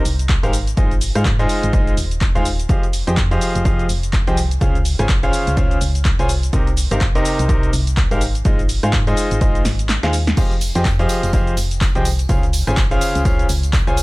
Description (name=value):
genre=piano house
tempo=125 BPM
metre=4/4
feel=swing 59% on 16ths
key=F minor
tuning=A4 = 439 Hz
part: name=solid FM bass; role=bass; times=0.0-14.0 s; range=Eb1 to Ab2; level=-20 LUFS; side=equal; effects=sidechain pumping
part: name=punchy analog drum machine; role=drums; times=0.1-14.0 s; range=cabasa, crash cymbal, handclaps, hi-hat, rim click, snare drum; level=-25 LUFS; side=equal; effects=small room ambience
part: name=electronic kick drum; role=drums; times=0.3-13.8 s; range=none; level=-18 LUFS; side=equal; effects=small room ambience
part: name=bright concert grand piano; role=riff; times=0.4-14.0 s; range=C3 to Ab5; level=-22 LUFS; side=equal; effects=sidechain pumping, dub echo
part: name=tambourine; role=percussion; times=10.4-14.0 s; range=none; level=-33 LUFS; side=right 4 dB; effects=none
room=digital ambience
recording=none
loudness=-15 LUFS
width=side -22 dB against mid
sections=0.0-14.0 A section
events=drum fill 9.7-10.4; kick drops out 9.9-10.4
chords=0.0 Cm7; 0.5 Ab6; 2.7 Fm9; 4.6 Dbmaj7; 6.3 Cm7; 8.2 Ab6; 10.4 Fm9; 12.3 Dbmaj7